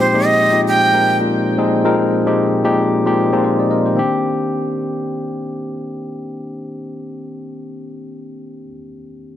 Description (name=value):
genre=amapiano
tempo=113 BPM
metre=4/4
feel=swing 58% on 16ths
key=C minor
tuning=A4 = 440 Hz
part: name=breathy bright jazz flute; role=melody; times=0.0-1.2 s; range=C5 to G5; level=-16 LUFS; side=right 2 dB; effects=tape echo
part: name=barky tine electric piano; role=accompaniment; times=0.0-9.4 s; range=Bb2 to Eb5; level=-17 LUFS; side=left 1 dB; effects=none
room=light reverb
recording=none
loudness=-14 LUFS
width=side -11 dB against mid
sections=0.0-4.0 A section; 4.0-8.2 B section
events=none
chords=0.0 Bb13sus4; 4.0 Cm9